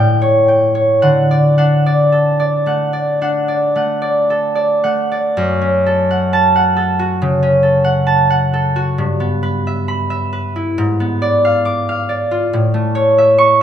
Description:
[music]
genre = classical, solo harp piece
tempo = 53-70 BPM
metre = 4/4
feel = rubato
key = unclear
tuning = A4 = 440 Hz
[part]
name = concert harp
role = solo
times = 0.0-13.6 s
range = F#2 to D6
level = -12 LUFS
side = equal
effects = none
[sound]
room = moderate recital hall reverb, RT60 1.5 s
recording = none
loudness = -12 LUFS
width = side -9 dB against mid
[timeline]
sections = 0.0-5.3 A section; 5.3-13.6 B section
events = none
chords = 0.0 A7; 1.0 D; 5.3 F#m; 9.0 Em/G; 10.8 G#dim7; 12.5 A

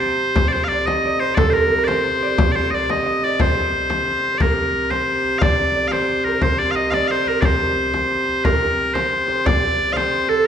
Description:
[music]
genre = medieval dance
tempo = 119 BPM (dotted quarters)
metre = 6/8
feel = straight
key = C minor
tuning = A4 = 440 Hz
[part]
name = loud bright bagpipes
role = melody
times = 0.0-10.5 s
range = A4 to F5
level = -19 LUFS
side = left 1 dB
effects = none
[part]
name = warm hurdy-gurdy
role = drone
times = 0.0-10.5 s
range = C3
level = -26 LUFS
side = equal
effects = none
[part]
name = frame drum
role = percussion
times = 0.4-10.4 s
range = none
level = -22 LUFS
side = left 1 dB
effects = none
[part]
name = concert harp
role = second line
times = 0.5-10.5 s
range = A4 to Eb5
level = -24 LUFS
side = right 4 dB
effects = none
[sound]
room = wet recital hall reverb, RT60 1.3 s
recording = recorded in a church or concert hall, nothing above 10.5 kHz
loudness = -16 LUFS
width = side -8 dB against mid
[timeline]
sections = 0.0-4.4 A section; 4.4-10.5 B section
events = none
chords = none

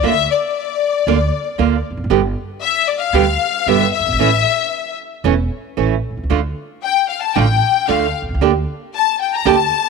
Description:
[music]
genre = tango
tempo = 115 BPM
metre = 4/4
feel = rubato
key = unclear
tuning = A4 = 440 Hz
[part]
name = rich studio violin section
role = second line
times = 0.0-9.9 s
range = D5 to Bb5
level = -17 LUFS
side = left 12 dB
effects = none
[part]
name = nylon-string guitar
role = accompaniment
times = 0.0-9.6 s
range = B2 to G4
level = -18 LUFS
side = right 13 dB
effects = none
[part]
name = upright bass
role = bass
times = 0.0-9.7 s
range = E1 to D2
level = -20 LUFS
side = right 1 dB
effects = none
[sound]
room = light reverb, small room ambience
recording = 1960s-style stereo with parts hard left and right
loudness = -15 LUFS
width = side -4 dB against mid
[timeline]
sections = 0.0-9.9 A section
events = violin section solo 0.0-9.9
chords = 0.0 Bb/D; 2.1 G; 4.2 A; 6.3 Dm; 8.4 Gm/D (rootless)

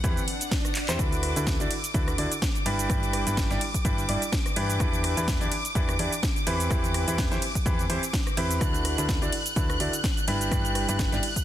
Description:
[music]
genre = piano house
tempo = 126 BPM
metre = 4/4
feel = swing 56% on 16ths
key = D mixolydian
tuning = A4 = 442 Hz
[part]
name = warm symphonic violin section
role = sustained chords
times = 0.0-11.4 s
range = F#5 to F#6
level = -34 LUFS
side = left 1 dB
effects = sidechain pumping
[part]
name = clear baby grand piano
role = riff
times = 0.0-11.2 s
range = D3 to D5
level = -30 LUFS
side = equal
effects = sidechain pumping, ping-pong delay
[part]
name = solid FM bass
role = bass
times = 0.0-11.2 s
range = G1 to G2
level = -30 LUFS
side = equal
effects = sidechain pumping
[part]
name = electronic kick drum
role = drums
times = 0.0-11.4 s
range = none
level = -28 LUFS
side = equal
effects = overdrive
[part]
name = house drum kit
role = drums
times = 0.0-11.4 s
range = cabasa, handclaps, hi-hat, ride cymbal, rim click, snare drum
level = -32 LUFS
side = right 1 dB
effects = overdrive
[part]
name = swell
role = sound effects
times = 0.2-1.0 s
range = none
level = -37 LUFS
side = right 1 dB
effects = none
[sound]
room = digital ambience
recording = dense, heavily limited modern master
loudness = -24 LUFS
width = side -12 dB against mid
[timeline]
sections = 0.0-11.4 A section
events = swell 0.2-1.0; drum fill 0.8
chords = 0.0 Cmaj7/E; 1.0 D69; 2.7 G6; 4.8 Em7; 6.5 Cmaj7/E; 8.6 D69; 10.3 G6

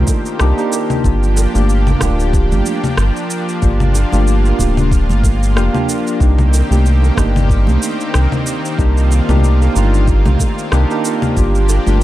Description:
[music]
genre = sunset chillout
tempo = 93 BPM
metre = 4/4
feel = swing 56% on 16ths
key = C minor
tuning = A4 = 440 Hz
[part]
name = soft electric-piano-like synth keys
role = accompaniment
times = 0.0-12.0 s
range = Bb3 to G4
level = -19 LUFS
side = moving between left 4 dB and right 2 dB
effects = chorus, auto-pan, analog delay
[part]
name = lush unison pad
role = sustained chords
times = 0.0-12.0 s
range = Eb3 to G4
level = -22 LUFS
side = equal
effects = chorus
[part]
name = round analog bass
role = bass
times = 0.0-12.0 s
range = D1 to C2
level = -13 LUFS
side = equal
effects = tube saturation
[part]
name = electronic cabasa, rim click and congas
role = drums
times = 0.1-12.0 s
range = none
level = -21 LUFS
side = left 1 dB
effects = none
[part]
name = electronic kick drum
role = drums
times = 0.1-11.5 s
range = none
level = -16 LUFS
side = equal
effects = none
[part]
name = bongos and congas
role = percussion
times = 0.1-12.0 s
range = none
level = -25 LUFS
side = right 2 dB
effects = none
[sound]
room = little or no reverb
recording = dry, gritty hardware recording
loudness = -12 LUFS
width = side -15 dB against mid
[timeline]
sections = 0.0-12.0 A section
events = none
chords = 0.0 Cm7; 1.0 Gm7; 6.2 Cm7; 11.4 Gm7

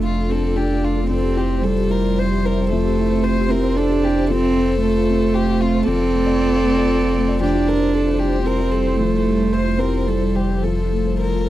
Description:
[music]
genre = neoclassical piano and strings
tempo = 113 BPM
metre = 3/4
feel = rubato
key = unclear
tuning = A4 = 440 Hz
[part]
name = warm violin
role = melody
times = 0.0-11.5 s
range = F4 to C5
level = -24 LUFS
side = left 4 dB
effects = none
[part]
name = warm cello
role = second line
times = 0.0-11.5 s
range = F3 to D4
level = -20 LUFS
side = right 4 dB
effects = none
[part]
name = dark upright piano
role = accompaniment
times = 0.0-11.5 s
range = F2 to D5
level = -25 LUFS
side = left 6 dB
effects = none
[part]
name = warm viola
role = accompaniment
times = 0.0-11.5 s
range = A4 to D5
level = -30 LUFS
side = right 3 dB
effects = none
[part]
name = ethereal airy pad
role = sustained chords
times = 0.0-11.5 s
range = G3 to F5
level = -29 LUFS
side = equal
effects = ensemble chorus, built-in reverb
[part]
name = pure sine sub bass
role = bass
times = 0.0-11.5 s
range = F1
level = -23 LUFS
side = equal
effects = none
[sound]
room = little or no reverb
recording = dry, close 1970s-style studio recording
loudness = -16 LUFS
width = side -13 dB against mid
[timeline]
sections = 0.0-11.5 A section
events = none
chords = 0.0 Dm/F; 1.1 C/F; 4.3 F; 5.9 Dm/F; 7.4 C/F; 10.6 F

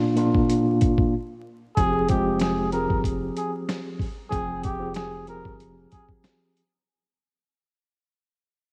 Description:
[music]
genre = hip hop, boom-bap hip-hop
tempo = 94 BPM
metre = 4/4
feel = swing 55% on 16ths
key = F dorian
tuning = A4 = 442 Hz
[part]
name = mellow tine electric piano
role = accompaniment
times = 0.0-6.6 s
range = Bb2 to G5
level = -26 LUFS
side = equal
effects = cassette tape, high-pass filter, low-pass filter
[part]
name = dusty soul sampler-style drum kit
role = drums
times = 0.2-6.7 s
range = hi-hat, kick drum, snare drum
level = -28 LUFS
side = equal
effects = cassette tape
[part]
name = trumpet with cup mute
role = melody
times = 1.8-6.1 s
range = G4 to Bb4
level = -31 LUFS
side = equal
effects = high-pass filter, low-pass filter, cassette tape
[part]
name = soft dub sub bass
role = bass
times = 1.8-5.9 s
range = F1 to G1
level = -37 LUFS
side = equal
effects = none
[sound]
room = light reverb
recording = home recording on cassette, vinyl crackle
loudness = -24 LUFS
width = mono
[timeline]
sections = 0.0-1.8 A section; 1.8-6.9 B section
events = break 0.0-1.8; fade-out 1.8-6.9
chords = 0.0 Bb; 1.8 Fmadd9

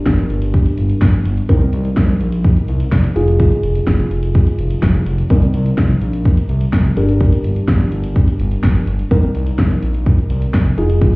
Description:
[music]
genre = synth-pop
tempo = 126 BPM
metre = 4/4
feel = straight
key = C minor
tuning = A4 = 440 Hz
[part]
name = muted felt-like synth keys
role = accompaniment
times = 0.0-11.2 s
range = C4 to Bb4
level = -21 LUFS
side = equal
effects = chorus
[part]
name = smooth synth bass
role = bass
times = 0.1-11.1 s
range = F1 to C2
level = -16 LUFS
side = equal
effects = none
[part]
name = pop drum kit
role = drums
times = 0.1-11.1 s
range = hi-hat, kick drum, snare drum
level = -13 LUFS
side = equal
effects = none
[sound]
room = light reverb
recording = heard muffled through a wall, stone room reverb, EQ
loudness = -12 LUFS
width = side -24 dB against mid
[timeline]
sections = 0.0-11.2 A section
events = none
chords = 0.0 Gm; 1.5 Cm7; 3.2 Fm7; 5.3 Cm7; 7.0 Gm; 9.1 Cm7

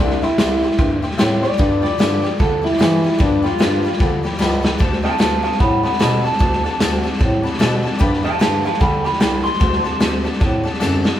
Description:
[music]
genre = rockabilly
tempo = 150 BPM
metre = 4/4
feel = swing 60% on 8ths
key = G mixolydian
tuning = A4 = 440 Hz
[part]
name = electric guitar through a small old amp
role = melody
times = 0.0-10.2 s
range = D4 to C6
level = -20 LUFS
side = equal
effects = none
[part]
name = honky-tonk upright piano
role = accompaniment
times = 0.0-11.1 s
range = D5 to D6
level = -29 LUFS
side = left 4 dB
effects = none
[part]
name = picked steel-string acoustic guitar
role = accompaniment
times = 0.0-11.2 s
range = G2 to A4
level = -27 LUFS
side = left 3 dB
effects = none
[part]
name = breathy bass clarinet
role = bass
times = 0.0-11.1 s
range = C2 to E3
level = -21 LUFS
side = equal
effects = none
[part]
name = raw garage drum kit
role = drums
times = 0.1-11.1 s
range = hi-hat, kick drum, snare drum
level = -18 LUFS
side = equal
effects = none
[sound]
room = moderate studio reverb, RT60 0.6 s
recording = band playing live in one room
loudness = -15 LUFS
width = side -11 dB against mid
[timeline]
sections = 0.0-11.2 A section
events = clean electric guitar solo 0.0-11.2; drum fill 4.4-4.8, 10.8-11.2; honky-tonk piano fill 7.2-8.0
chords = 0.0 C7; 1.6 G7; 4.8 D7; 8.0 G7; 9.6 D7

